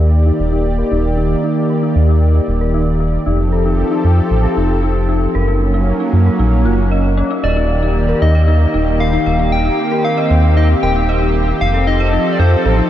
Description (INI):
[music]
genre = IDM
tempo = 115 BPM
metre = 4/4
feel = straight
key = Eb lydian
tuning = A4 = 440 Hz
[part]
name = warm analog pad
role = sustained chords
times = 0.0-12.9 s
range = Eb3 to D5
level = -18 LUFS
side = equal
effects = chorus
[part]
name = dark detuned synth bell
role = arpeggios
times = 0.0-12.9 s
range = Db4 to Eb5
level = -21 LUFS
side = left 1 dB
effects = chorus, phaser, low-pass filter, diffuse ambient delay
[part]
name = round analog bass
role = bass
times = 0.0-12.8 s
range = Eb1 to Gb2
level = -14 LUFS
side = equal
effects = none
[part]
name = soft struck synth lead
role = melody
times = 7.4-12.9 s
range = C5 to G5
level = -19 LUFS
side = left 1 dB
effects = chorus, analog delay
[sound]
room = moderate huge ambient reverb, RT60 7.8 s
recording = dreamy mix soaked in reverb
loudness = -12 LUFS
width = side -12 dB against mid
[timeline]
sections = 0.0-12.9 A section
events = filter sweep on synth bell 0.0-12.9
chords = 0.0 Ebmaj7; 3.3 Fadd9; 5.3 Gb; 7.4 Eb; 11.6 Fadd9